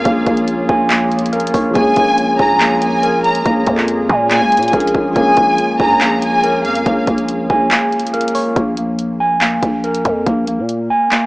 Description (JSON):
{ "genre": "hip hop, trap", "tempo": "141 BPM", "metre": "4/4", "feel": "half-time", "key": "Bb minor", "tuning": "A4 = 436 Hz", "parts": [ { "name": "rich studio violin section", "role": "second line", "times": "0.0-6.8 s", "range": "F5 to Bb5", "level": "-16 LUFS", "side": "equal", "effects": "tape echo" }, { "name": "soft electric-piano-like synth keys", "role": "accompaniment", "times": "0.0-8.6 s", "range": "F3 to F5", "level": "-20 LUFS", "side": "equal", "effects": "chorus, low-pass filter" }, { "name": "warbly tape-like pad", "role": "sustained chords", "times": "0.0-8.5 s", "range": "Bb3 to Db5", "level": "-24 LUFS", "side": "equal", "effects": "chorus, built-in reverb, phaser" }, { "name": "mellow electric guitar", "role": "arpeggios", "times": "0.0-11.3 s", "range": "Bb3 to Ab5", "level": "-17 LUFS", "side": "equal", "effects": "low-pass filter, tape echo" }, { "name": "growling 808-style bass", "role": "bass", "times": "0.0-10.9 s", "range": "Bb1 to Bb2", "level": "-21 LUFS", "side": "equal", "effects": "none" }, { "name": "trap drum kit", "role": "drums", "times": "0.1-11.2 s", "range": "handclaps, hi-hat, kick drum", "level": "-19 LUFS", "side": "equal", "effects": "none" } ], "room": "light reverb, digital ambience", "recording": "small speaker sound", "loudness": "-12 LUFS", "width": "side -22 dB against mid", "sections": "0.0-8.6 A section; 8.6-11.3 B section", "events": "synth keys fill 1.1-1.8; kick muted 7.7-8.6", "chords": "0.0 Bbm7; 8.6 Bb5", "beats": "| 0.05 0.48 0.90 1.33 | 1.75 2.18 2.60 3.03 | 3.46 3.88 4.31 4.73 | 5.16 5.58 6.01 6.43 | 6.86 7.29 7.71 8.14 | 8.56 8.99 9.41 9.84 | 10.26 10.69 11.12" }